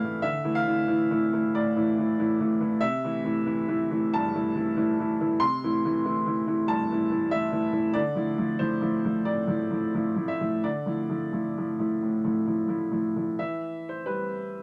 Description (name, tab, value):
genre	neoclassical minimalist piano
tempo	86-96 BPM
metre	4/4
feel	rubato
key	D minor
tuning	A4 = 440 Hz
part	clear upright piano	solo	0.0-14.6 s	G2 to C6	-27 LUFS	equal	none
room	wet studio reverb, RT60 0.5 s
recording	none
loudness	-27 LUFS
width	mono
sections	0.0-13.4 A section; 13.4-14.6 B section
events	none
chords	0.0 Dmadd9; 2.8 C6; 8.0 Dmadd9; 13.4 Em